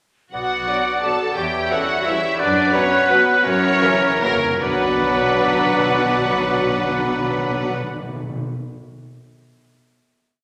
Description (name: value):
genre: classical, orchestral ballroom waltz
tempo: 142-190 BPM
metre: 3/4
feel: rubato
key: B minor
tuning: A4 = 440 Hz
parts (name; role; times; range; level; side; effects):
- clear studio violin section; melody; 0.3-7.7 s; A#4 to A5; -27 LUFS; equal; none
- clear clarinet; second line; 0.3-7.7 s; A#4 to A5; -29 LUFS; equal; none
- mellow small flute group; second line; 0.3-7.7 s; E5 to F#5; -31 LUFS; equal; none
- warm oboe; second line; 0.3-7.7 s; A#4 to D5; -25 LUFS; equal; none
- warm bassoon; accompaniment; 0.3-7.7 s; E3 to B3; -32 LUFS; equal; none
- rich symphonic cello section; bass; 0.3-7.7 s; A#3 to A4; -28 LUFS; equal; none
- rich symphonic double bass section; bass; 0.3-7.7 s; B1 to F#2; -33 LUFS; equal; none
- rich symphonic violin section; second line; 0.7-7.7 s; A#4 to F#5; -30 LUFS; equal; none
- rich symphonic viola section; accompaniment; 0.7-7.7 s; D4 to D5; -29 LUFS; equal; none
- mellow French horn section; sustained chords; 0.7-7.7 s; F#3 to F#4; -33 LUFS; equal; none
- warm trombone section; sustained chords; 0.7-7.7 s; B2 to F#3; -31 LUFS; equal; none
- clear trumpet; stabs; 0.7-7.7 s; A#4 to E5; -28 LUFS; equal; none
- timpani; percussion; 3.4-8.4 s; F#2 to B2; -32 LUFS; equal; none
room: wet scoring stage reverb, RT60 1.7 s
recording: none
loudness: -19 LUFS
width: mono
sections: 0.3-4.6 A section; 4.6-7.0 final chord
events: slowing down 1.9-4.6; timpani fill 3.4-4.6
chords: 0.3 Bm; 1.4 C#dim/E; 2.4 Bm/F#; 3.4 F#7; 4.6 Bm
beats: | 0.34 0.68 1.04 | 1.38 1.71 2.06 | 2.40 2.74 3.10 | 3.45 3.81 4.22 | 4.61 5.00 5.41 | 5.80 6.19 6.59